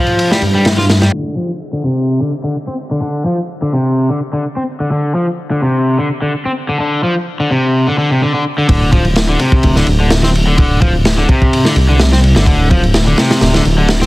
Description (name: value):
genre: breakbeat, breaks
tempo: 127 BPM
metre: 4/4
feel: swing 54% on 16ths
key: D minor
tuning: A4 = 440 Hz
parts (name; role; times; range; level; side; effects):
- crunchy overdriven guitar; riff; 0.0-14.1 s; C3 to F4; -14 LUFS; left 1 dB; low-pass filter, ping-pong delay
- crunchy breakbeat drum kit; drums; 0.1-1.1, 8.7-14.1 s; kick drum, ride cymbal, snare drum; -13 LUFS; equal; none
- dark detuned saw bass; bass; 0.4-1.1, 8.7-14.1 s; D1 to G2; -12 LUFS; equal; none
room: light reverb, small room ambience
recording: dense, heavily limited modern master, vinyl crackle, low-pass filter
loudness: -11 LUFS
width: side -19 dB against mid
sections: 0.0-1.1 A section; 1.1-8.7 B section; 8.7-14.1 C section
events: filter sweep on overdriven electric guitar 1.1-8.7; filter sweep 1.1-8.7; drop 8.7-14.1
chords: none